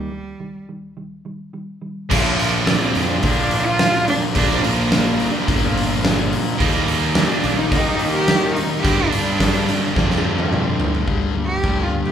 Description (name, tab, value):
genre	quiet-loud alternative rock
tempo	107 BPM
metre	4/4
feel	straight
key	unclear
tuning	A4 = 440 Hz
part	rich cello	melody	0.0-12.1 s	G3 to G4	-23 LUFS	right 2 dB	none
part	mellow electric guitar	arpeggios	0.0-2.1, 11.1-12.1 s	G2 to G4	-32 LUFS	right 2 dB	none
part	phased string machine	sustained chords	3.5-11.1 s	Eb3 to Bb5	-34 LUFS	left 1 dB	none
part	cranked stack guitar	riff	2.1-11.1 s	G2 to Eb4	-22 LUFS	right 7 dB	overdrive
part	thick fuzz guitar	riff	2.1-12.1 s	G2 to Eb4	-24 LUFS	left 7 dB	distortion
part	fuzz fingered electric bass	bass	2.1-12.1 s	G1 to Eb3	-25 LUFS	equal	overdrive
part	huge arena drum kit	drums	2.1-12.1 s	crash cymbal, hi-hat, kick drum, snare drum, toms	-21 LUFS	equal	none
room	light reverb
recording	band playing live in one room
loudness	-16 LUFS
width	side -9 dB against mid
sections	0.0-2.1 A section; 2.1-11.1 B section; 11.1-12.1 C section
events	break 0.0-2.1; drum fill 10.0-11.1; cello solo 11.1-12.1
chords	0.0 Eb; 2.1 Bbadd9; 6.6 Eb; 8.8 Gm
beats	0.41 0.97 1.54 | 2.11 2.67 3.23 3.80 | 4.36 4.92 5.48 6.04 | 6.60 7.16 7.72 8.28 | 8.84 9.40 9.96 10.51 | 11.07 11.63